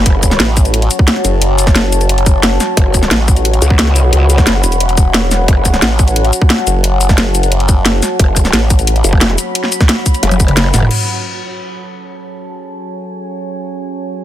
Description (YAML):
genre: dark technical drum and bass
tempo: 177 BPM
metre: 4/4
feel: straight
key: F# minor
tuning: A4 = 438 Hz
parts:
  - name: deep dark ambient pad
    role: sustained chords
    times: 0.0-14.2 s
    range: F#4 to C#6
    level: -19 LUFS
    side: left 2 dB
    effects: chorus, built-in reverb, sidechain pumping
  - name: growl bass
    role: bass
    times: 0.0-0.4, 2.8-5.8, 8.2-10.9 s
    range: F#1 to C#2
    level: -13 LUFS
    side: equal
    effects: chorus
  - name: drum and bass drum kit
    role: drums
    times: 0.1-11.0 s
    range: crash cymbal, hi-hat, shaker, snare drum, toms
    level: -14 LUFS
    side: equal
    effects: overdrive, studio ambience
  - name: electronic kick drum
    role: drums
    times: 0.1-10.5 s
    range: none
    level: -10 LUFS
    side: equal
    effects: overdrive, studio ambience
  - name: formant-sweep wobble bass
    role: bass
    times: 0.4-9.0 s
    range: E1 to A1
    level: -13 LUFS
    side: equal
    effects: chorus
room: little or no reverb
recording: dense, heavily limited modern master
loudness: -9 LUFS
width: side -12 dB against mid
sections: 0.0-10.9 A section; 10.9-14.2 B section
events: drop 0.0-10.9; drum fill 10.2-10.9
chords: 0.0 F#m; 10.9 F#madd9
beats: | 0.06 0.40 0.74 1.08 | 1.42 1.75 2.09 2.43 | 2.77 3.11 3.45 3.79 | 4.13 4.47 4.80 5.14 | 5.48 5.82 6.16 6.50 | 6.84 7.18 7.52 7.86 | 8.20 8.53 8.87 9.21 | 9.55 9.89 10.23 10.57 | 10.91 11.25 11.59 11.92 | 12.26 12.60 12.94 13.28 | 13.62 13.96